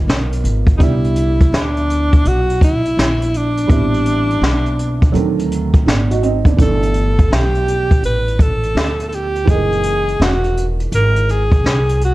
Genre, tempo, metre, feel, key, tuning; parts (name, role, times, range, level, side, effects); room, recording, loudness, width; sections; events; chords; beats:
hip hop, jazz-hop; 83 BPM; 4/4; swing 66% on 16ths; G major; A4 = 440 Hz
dark upright piano; accompaniment; 0.0-12.1 s; Eb3 to F#4; -22 LUFS; right 5 dB
upright bass; bass; 0.0-12.1 s; E1 to D2; -18 LUFS; equal
jazz brush drum kit; drums; 0.1-12.1 s; hi-hat, kick drum, snare drum; -15 LUFS; equal
clear alto saxophone; melody; 0.8-12.1 s; D4 to B4; -18 LUFS; equal; slapback echo
light reverb; dark, warm production; -13 LUFS; side -17 dB against mid
0.0-12.1 A section
0.0 G7#9b13 (rootless); 0.8 Cmaj9; 3.7 Am9; 5.1 D7b9; 6.6 G69; 9.5 F#13
0.08 | 0.80 1.53 2.25 2.97 | 3.69 4.42 5.14 5.86 | 6.59 7.31 8.03 8.76 | 9.48 10.20 10.92 11.65